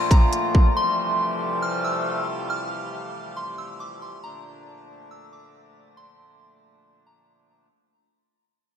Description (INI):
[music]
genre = hip hop, atmospheric cloud-rap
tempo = 138 BPM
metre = 4/4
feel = half-time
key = unclear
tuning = A4 = 439 Hz
[part]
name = soft synth bell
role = melody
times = 0.0-7.3 s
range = Bb5 to F6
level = -27 LUFS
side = equal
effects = chorus, diffuse ambient delay
[part]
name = accordion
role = sustained chords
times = 0.0-7.7 s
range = Bb2 to F4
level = -29 LUFS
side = left 1 dB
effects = stereo widening, sidechain pumping
[part]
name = drifting glass-harmonics texture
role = texture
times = 0.0-7.7 s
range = A3 to Bb5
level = -38 LUFS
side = left 1 dB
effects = chorus, built-in reverb
[part]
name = trap drum kit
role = drums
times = 0.1-0.6 s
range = hi-hat, kick drum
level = -16 LUFS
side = equal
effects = vintage 12-bit sampler grit
[sound]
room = wet lush hall reverb, RT60 1.9 s, digital ambience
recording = dreamy mix soaked in reverb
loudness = -21 LUFS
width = side -10 dB against mid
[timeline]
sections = 0.0-7.7 A section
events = fade-out 0.0-7.7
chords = 0.0 Bbmaj7; 0.8 Fmaj9; 4.2 Bbmaj7